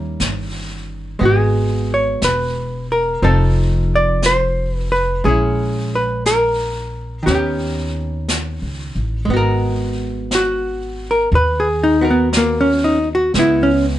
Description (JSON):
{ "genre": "jazz ballad", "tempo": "59 BPM", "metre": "4/4", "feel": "swing 69% on 8ths", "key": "G# minor", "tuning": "A4 = 442 Hz", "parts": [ { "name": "hollow-body jazz guitar", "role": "melody", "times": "0.0-13.9 s", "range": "A#3 to D5", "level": "-16 LUFS", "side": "equal", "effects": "none" }, { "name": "archtop guitar, miked and amplified", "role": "accompaniment", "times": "0.0-14.0 s", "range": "D#3 to A#4", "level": "-23 LUFS", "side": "right 1 dB", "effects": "none" }, { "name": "upright bass", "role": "bass", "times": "0.0-14.0 s", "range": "E1 to D#2", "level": "-20 LUFS", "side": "equal", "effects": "none" }, { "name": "jazz brush drum kit", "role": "drums", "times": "0.2-14.0 s", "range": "brushed snare drum, hi-hat, snare drum", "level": "-25 LUFS", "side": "left 1 dB", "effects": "none" } ], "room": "light reverb", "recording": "nothing above 10.9 kHz", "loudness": "-15 LUFS", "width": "side -13 dB against mid", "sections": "0.0-9.3 A section; 9.3-14.0 B section", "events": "hollow-body jazz guitar solo 9.3-14.0", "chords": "0.0 D#7b9; 1.2 G#m7; 3.2 F7; 5.2 A#m7b5; 7.3 D#aug7; 9.3 G#m9; 13.3 C#m7" }